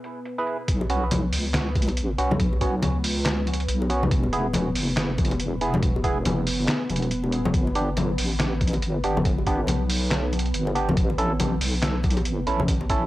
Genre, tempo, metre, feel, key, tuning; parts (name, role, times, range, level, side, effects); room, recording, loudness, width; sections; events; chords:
deep dubstep; 140 BPM; 4/4; swing 60% on 16ths, half-time; A4 = 441 Hz
deep dark ambient pad; sustained chords; 0.0-13.1 s; B3 to B4; -32 LUFS; equal; chorus, built-in reverb, cassette tape
trip hop sampler-style drum kit; drums; 0.0-13.0 s; handclaps, hi-hat, snare drum; -28 LUFS; equal; low-pass filter on hats, studio reverb, cassette tape, low-pass filter on snare
percussive organ stab; stabs; 0.4-13.0 s; B3 to B4; -29 LUFS; right 2 dB; chorus, cassette tape, dub echo
deep soft wobble bass; bass; 0.7-13.1 s; E1 to C#2; -26 LUFS; equal; chorus, tube saturation
electronic kick drum; drums; 0.7-13.0 s; -24 LUFS; equal; studio reverb, cassette tape
bongos and congas; percussion; 0.8-12.9 s; -28 LUFS; left 2 dB; dub echo
light reverb; home recording on cassette; -21 LUFS; side -16 dB against mid
0.7-13.1 A section
drop 0.7-13.1
0.0 E; 0.7 Bsus2; 4.1 E; 7.5 G; 11.0 A